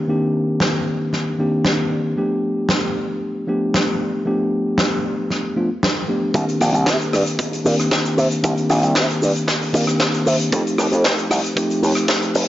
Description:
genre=nu-disco, nu disco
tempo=115 BPM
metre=4/4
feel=straight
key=C dorian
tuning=A4 = 442 Hz
part: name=tine electric piano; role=accompaniment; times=0.0-12.5 s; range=Eb3 to G4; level=-20 LUFS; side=equal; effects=sidechain pumping, low-pass filter, analog delay
part: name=huge arena drum kit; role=drums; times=0.6-12.5 s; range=hi-hat, rim click, shaker, snare drum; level=-21 LUFS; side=equal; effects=high-pass filter on hats, high-pass filter on snare, high-pass filter on perc, high-pass filter on room
part: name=slap bass with an envelope filter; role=bass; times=6.3-12.4 s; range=F1 to C3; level=-18 LUFS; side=equal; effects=sidechain pumping, high-pass filter
part: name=kick drum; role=drums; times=6.3-12.2 s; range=none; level=-27 LUFS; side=equal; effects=high-pass filter on kick, high-pass filter on snare, high-pass filter on room
room=light reverb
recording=dry, gritty hardware recording, nothing above 7.5 kHz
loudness=-17 LUFS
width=side -14 dB against mid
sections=0.0-6.3 A section; 6.3-12.5 B section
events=build-up 6.3-12.5; filter sweep on tine electric piano 6.3-12.5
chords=0.0 Cm9; 2.2 G7; 6.3 Cm9; 10.5 F7

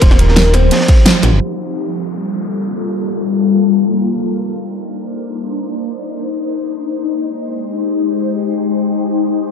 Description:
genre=liquid drum and bass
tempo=free time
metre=none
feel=none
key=G phrygian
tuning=A4 = 441 Hz
part: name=warm velvety synth lead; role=melody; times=0.0-1.2 s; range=Bb4 to C5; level=-20 LUFS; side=left 2 dB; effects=chorus, cassette tape, dub echo
part: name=ethereal airy pad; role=sustained chords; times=0.0-9.5 s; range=F3 to C5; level=-16 LUFS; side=left 3 dB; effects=ensemble chorus, built-in reverb, phaser
part: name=smooth synth bass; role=bass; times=0.0-1.4 s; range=Eb1 to Bb1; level=-12 LUFS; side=equal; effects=none
part: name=crunchy breakbeat drum kit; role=drums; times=0.0-1.3 s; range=hi-hat, ride cymbal, snare drum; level=-20 LUFS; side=equal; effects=high-pass filter on cymbals, small room ambience, high-pass filter on hats, high-pass filter on snare, high-pass filter on room
part: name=electronic kick drum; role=drums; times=0.0-1.0 s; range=none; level=-9 LUFS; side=equal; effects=small room ambience
part: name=pop drum kit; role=drums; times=0.0-1.3 s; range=hi-hat, snare drum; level=-16 LUFS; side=equal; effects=small room ambience
part: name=downlifter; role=sound effects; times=1.5-4.2 s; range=none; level=-30 LUFS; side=left 1 dB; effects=none
room=moderate lush hall reverb, RT60 1.9 s, studio reverb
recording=dark, warm production, low-pass filter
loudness=-13 LUFS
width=side -7 dB against mid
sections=0.0-1.4 A section; 1.4-9.5 B section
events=kick drops out 1.1-1.4; band accent 1.1; filter sweep 1.4-9.5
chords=0.0 Eb69; 1.4 Gm9; 4.0 Cm9; 6.8 Abmaj7

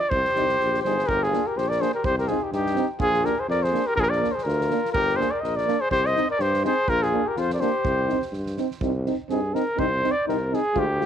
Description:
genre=balkan folk, Balkan brass band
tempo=124 BPM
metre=2/4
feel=swing 56% on 16ths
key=C minor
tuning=A4 = 440 Hz
part: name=dark trumpet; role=melody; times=0.0-11.1 s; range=G4 to Eb5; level=-23 LUFS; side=right 1 dB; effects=none
part: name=mellow flugelhorn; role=second line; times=0.0-8.3 s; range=Eb4 to C5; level=-30 LUFS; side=left 12 dB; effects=none
part: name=clear tuba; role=bass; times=0.1-11.0 s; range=G1 to G2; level=-28 LUFS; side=equal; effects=none
part: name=soft-mallet drum kit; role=percussion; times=0.1-11.1 s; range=kick drum, snare drum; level=-35 LUFS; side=right 2 dB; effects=none
part: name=warm euphonium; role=accompaniment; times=0.3-11.1 s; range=G3 to C4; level=-30 LUFS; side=right 15 dB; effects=none
part: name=breathy trombone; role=accompaniment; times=0.4-11.1 s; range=D4 to F4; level=-31 LUFS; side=left 14 dB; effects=none
room=light reverb, small room ambience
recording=1960s-style stereo with parts hard left and right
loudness=-21 LUFS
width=side -9 dB against mid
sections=0.0-1.1 A section; 1.1-8.8 A section; 8.8-11.1 B section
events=trumpet solo 8.8-11.1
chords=0.1 Cm; 1.1 Gm; 2.0 Cm; 3.0 Bb; 4.9 Gm; 5.9 Cm; 6.9 Bb; 7.8 Cm

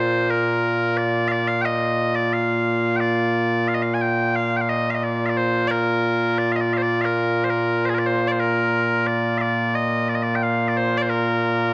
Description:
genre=scottish traditional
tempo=89 BPM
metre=4/4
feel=straight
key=Bb major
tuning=A4 = 439 Hz
part: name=loud bright bagpipes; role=solo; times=0.0-11.7 s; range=Bb2 to Ab5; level=-21 LUFS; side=equal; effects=none
room=wet spring reverb, RT60 1.9 s, small room reverb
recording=dark, warm production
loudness=-21 LUFS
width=mono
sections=0.0-8.4 A section; 8.4-11.7 A section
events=none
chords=none

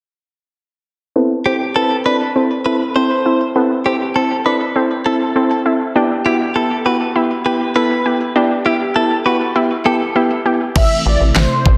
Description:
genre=synth-pop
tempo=100 BPM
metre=4/4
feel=straight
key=unclear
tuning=A4 = 440 Hz
part: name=soft electric-piano-like synth keys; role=accompaniment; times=1.2-10.6 s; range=B3 to B4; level=-18 LUFS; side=equal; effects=chorus, low-pass filter
part: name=analog pluck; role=arpeggios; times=1.2-10.7 s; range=B3 to G4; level=-24 LUFS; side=equal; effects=chorus, low-pass filter, tape echo
part: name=direct-recorded clean electric guitar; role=second line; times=1.5-10.0 s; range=G4 to C5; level=-22 LUFS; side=equal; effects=spring reverb, tape echo
part: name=mellow synth brass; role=melody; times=10.8-11.8 s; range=C5 to E5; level=-20 LUFS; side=equal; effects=chorus
part: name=ensemble organ-string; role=sustained chords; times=10.8-11.8 s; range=C3 to E4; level=-24 LUFS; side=equal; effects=ensemble chorus
part: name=rubbery square bass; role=bass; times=10.8-11.8 s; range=A1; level=-17 LUFS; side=equal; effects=none
part: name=pop drum kit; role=drums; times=10.8-11.8 s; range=crash cymbal, kick drum, snare drum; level=-17 LUFS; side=equal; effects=none
room=wet lush hall reverb, RT60 1.9 s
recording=dense, heavily limited modern master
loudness=-16 LUFS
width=mono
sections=1.2-10.8 A section; 10.8-11.8 B section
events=filter sweep 1.2-10.8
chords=1.2 Am; 6.0 Em; 10.8 Am

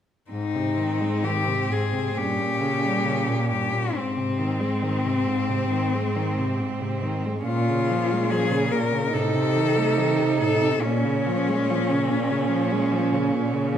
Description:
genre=classical, lyrical piece for cello ensemble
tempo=64-75 BPM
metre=4/4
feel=rubato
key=Ab major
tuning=A4 = 442 Hz
part: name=clear cello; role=melody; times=0.3-13.7 s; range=C4 to Bb4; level=-26 LUFS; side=left 5 dB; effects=none
part: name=rich cello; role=second line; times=0.3-13.8 s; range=C4 to Eb4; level=-28 LUFS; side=right 7 dB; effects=none
part: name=clear cello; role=accompaniment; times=0.3-13.8 s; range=G2 to A3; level=-27 LUFS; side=left 2 dB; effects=none
part: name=rich cello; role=bass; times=0.3-13.8 s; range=Ab2 to C3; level=-28 LUFS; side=right 2 dB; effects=none
room=wet recital hall reverb, RT60 1.4 s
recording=none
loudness=-21 LUFS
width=side -9 dB against mid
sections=0.3-13.8 A section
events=none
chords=0.3 Ab; 2.2 Gdim; 3.9 Ab; 7.5 Bbm7; 9.1 Adim; 10.8 Bbm7

